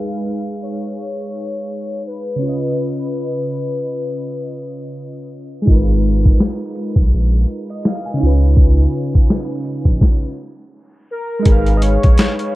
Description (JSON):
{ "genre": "lo-fi hip hop", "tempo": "83 BPM", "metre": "4/4", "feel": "swing 59% on 16ths", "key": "G# dorian", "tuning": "A4 = 440 Hz", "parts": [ { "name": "warbly lo-fi synth keys", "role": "accompaniment", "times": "0.0-12.6 s", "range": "C#3 to G#5", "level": "-22 LUFS", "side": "right 1 dB", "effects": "chorus" }, { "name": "warm velvety synth lead", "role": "melody", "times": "0.6-5.3, 11.1-12.5 s", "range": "A#4 to D#5", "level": "-24 LUFS", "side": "left 3 dB", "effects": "chorus, analog delay" }, { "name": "saturated sub bass", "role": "bass", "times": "5.7-12.2 s", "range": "G#1 to C#2", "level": "-14 LUFS", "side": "equal", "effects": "none" }, { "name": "boom bap sampler-style drum kit", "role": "drums", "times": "5.7-12.5 s", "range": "hi-hat, kick drum, snare drum", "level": "-13 LUFS", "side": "equal", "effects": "none" } ], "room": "little or no reverb", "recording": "dark, warm production, low-pass filter", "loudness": "-14 LUFS", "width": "side -17 dB against mid", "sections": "0.0-11.5 A section; 11.5-12.6 B section", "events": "filter sweep 0.0-11.5; stop 10.0-11.5", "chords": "0.0 G#m6; 5.7 G#m69; 8.2 C#9; 11.5 G#m69", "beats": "0.62 1.34 2.06 | 2.79 3.51 4.23 4.95 | 5.68 6.40 7.12 7.84 | 8.57 9.29 10.01 10.74 | 11.46 12.18" }